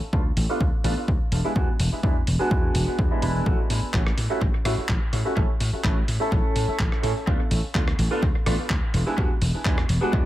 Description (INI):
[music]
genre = filtered disco house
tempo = 126 BPM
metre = 4/4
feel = straight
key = A major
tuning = A4 = 440 Hz
[part]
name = slap bass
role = bass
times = 0.0-10.2 s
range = E1 to A2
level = -25 LUFS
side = equal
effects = sidechain pumping, low-pass filter
[part]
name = tambourine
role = percussion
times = 0.0-10.2 s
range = none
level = -51 LUFS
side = left 5 dB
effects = none
[part]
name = clear grand piano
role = accompaniment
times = 0.1-10.3 s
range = G#3 to A4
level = -28 LUFS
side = right 1 dB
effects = phaser, sidechain pumping, low-pass filter, analog delay
[part]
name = electronic kick drum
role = drums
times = 0.1-10.2 s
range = none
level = -24 LUFS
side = equal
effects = none
[part]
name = dusty soul sampler-style drum kit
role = drums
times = 0.4-10.0 s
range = handclaps, hi-hat, rim click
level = -32 LUFS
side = equal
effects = sidechain pumping on hats, analog delay
[sound]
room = light reverb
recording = echo-heavy mix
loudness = -21 LUFS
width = side -14 dB against mid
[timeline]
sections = 0.0-10.3 A section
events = filter sweep 0.0-10.3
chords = 0.0 Dm6; 1.3 E7; 3.5 A6; 7.3 Dm6; 8.9 E7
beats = 0.13 0.61 1.08 | 1.56 2.04 2.51 2.99 | 3.46 3.94 4.42 4.89 | 5.37 5.84 6.32 6.80 | 7.27 7.75 8.23 8.70 | 9.18 9.65 10.13